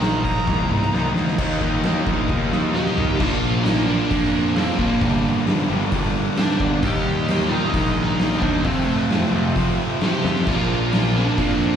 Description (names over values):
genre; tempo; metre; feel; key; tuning
quiet-loud alternative rock; 132 BPM; 4/4; straight; unclear; A4 = 440 Hz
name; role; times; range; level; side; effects
biting lead guitar; melody; 0.0-11.8 s; A3 to Bb5; -24 LUFS; right 2 dB; overdrive, slapback echo, digital delay
cranked stack guitar; riff; 0.0-11.8 s; F2 to Eb4; -25 LUFS; right 9 dB; overdrive, phaser, slapback echo
thick fuzz guitar; riff; 0.0-11.8 s; F2 to Eb4; -24 LUFS; left 10 dB; distortion, slapback echo
fuzz picked electric bass; bass; 0.0-11.8 s; G1 to F2; -24 LUFS; equal; overdrive
oversized low-tuned drum kit; drums; 0.0-11.5 s; crash cymbal, hi-hat, kick drum, snare drum, toms; -24 LUFS; equal; none
percussive tonewheel organ; sustained chords; 1.4-11.8 s; F4 to Bb5; -36 LUFS; equal; none
room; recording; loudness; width
light reverb; live gig heard through the venue's PA, club reverb; -18 LUFS; side -8 dB against mid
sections
0.0-1.4 A section; 1.4-3.2 B section; 3.2-11.8 C section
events
lead electric guitar solo 0.0-1.4; drum fill 0.5-1.4, 2.3-3.2, 10.2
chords
0.0 Ebsus2; 3.2 Bb; 5.0 Gm; 6.8 Eb; 8.7 F; 10.5 Bb